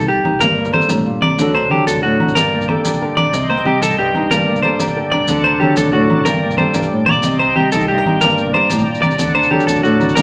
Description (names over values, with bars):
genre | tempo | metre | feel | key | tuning
highlife guitar band | 123 BPM (dotted quarters) | 12/8 | straight | G harmonic minor | A4 = 440 Hz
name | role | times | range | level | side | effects
nylon-string guitar | accompaniment | 0.0-10.2 s | G2 to Bb4 | -20 LUFS | equal | none
clean electric guitar | arpeggios | 0.0-10.2 s | F#4 to D5 | -18 LUFS | equal | none
fingered electric bass | bass | 0.0-10.2 s | G1 to D3 | -27 LUFS | equal | none
congas | percussion | 0.0-10.2 s | none | -23 LUFS | equal | none
maracas | percussion | 0.0-10.2 s | none | -31 LUFS | equal | none
agogo bells | percussion | 0.2-10.2 s | none | -30 LUFS | equal | none
bright tonewheel organ | sustained chords | 2.4-10.2 s | D5 to C6 | -26 LUFS | equal | slow rotary speaker, chorus vibrato
room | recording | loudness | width
wet studio reverb, RT60 0.7 s | none | -15 LUFS | mono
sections
0.0-10.2 A section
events
none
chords
0.4 Gm; 1.4 D; 2.4 Gm; 3.3 Cm; 4.3 Gm; 5.3 D; 6.3 Gm; 7.2 Cm; 8.2 Gm; 9.2 D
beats
| 0.41 0.90 1.38 1.87 | 2.36 2.85 3.34 3.82 | 4.31 4.80 5.29 5.78 | 6.26 6.75 7.24 7.72 | 8.21 8.70 9.19 9.67 | 10.16